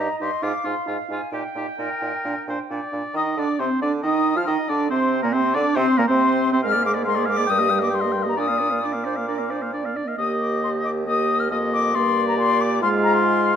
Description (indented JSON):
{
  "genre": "quick classical-period movement for wind quintet",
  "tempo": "137 BPM",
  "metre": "4/4",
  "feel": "straight",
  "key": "Eb major",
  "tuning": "A4 = 440 Hz",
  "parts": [
    { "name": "concert flute", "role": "melody", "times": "0.0-13.6 s", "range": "F5 to F6", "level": "-24 LUFS", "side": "left 6 dB", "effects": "none" },
    { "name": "warm oboe", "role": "second line", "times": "0.0-13.6 s", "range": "F4 to G5", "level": "-27 LUFS", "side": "left 1 dB", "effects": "none" },
    { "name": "mellow French horn", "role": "accompaniment", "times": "0.0-13.5 s", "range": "G3 to F4", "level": "-25 LUFS", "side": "right 1 dB", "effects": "none" },
    { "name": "warm clarinet", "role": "accompaniment", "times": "0.0-13.6 s", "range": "Bb3 to G5", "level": "-27 LUFS", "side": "right 7 dB", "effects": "none" },
    { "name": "clear bassoon", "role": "bass", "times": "0.0-13.6 s", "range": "Eb2 to F3", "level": "-28 LUFS", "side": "right 2 dB", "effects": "none" }
  ],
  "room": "moderate recital hall reverb, RT60 1.4 s",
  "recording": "none",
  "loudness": "-19 LUFS",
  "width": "side -8 dB against mid",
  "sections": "0.0-3.2 A section; 3.2-13.6 B section",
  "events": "none",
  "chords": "0.4 Fm7/Ab; 1.3 Eb/Bb; 2.3 Bb; 3.2 Cmadd9; 4.9 Bbadd9; 5.8 Bbsus2; 6.6 Bb7/Ab; 7.5 Eb/G; 8.4 Bb; 10.2 Eb; 11.9 Gm; 12.8 Fm/Ab"
}